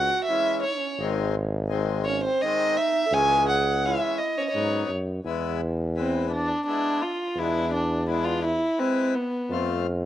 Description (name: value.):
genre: klezmer.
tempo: 84 BPM.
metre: 3/4.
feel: straight.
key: C# harmonic minor, E phrygian dominant from 5.3 s.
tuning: A4 = 442 Hz.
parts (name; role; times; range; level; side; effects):
dark violin; melody; 0.0-9.5 s; B3 to G#5; -24 LUFS; equal; cassette tape.
mellow clarinet; second line; 0.0-4.9 s; B#3 to A4; -31 LUFS; right 9 dB; none.
clear tuba; bass; 0.0-10.1 s; G#1 to G#2; -27 LUFS; equal; none.
accordion; accompaniment; 0.3-9.9 s; D#3 to B4; -32 LUFS; left 10 dB; none.
room: moderate spring reverb, RT60 1.2 s, small room ambience.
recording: home recording on cassette.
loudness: -23 LUFS.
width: side -12 dB against mid.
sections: 0.0-5.3 A section; 5.3-10.1 B section.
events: none.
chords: 0.0 C#m; 1.0 G#; 3.1 C#m; 4.5 B; 5.3 E; 9.5 F.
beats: 0.28 | 0.99 1.70 2.41 | 3.12 3.83 4.54 | 5.25 5.96 6.67 | 7.38 8.09 8.80 | 9.51.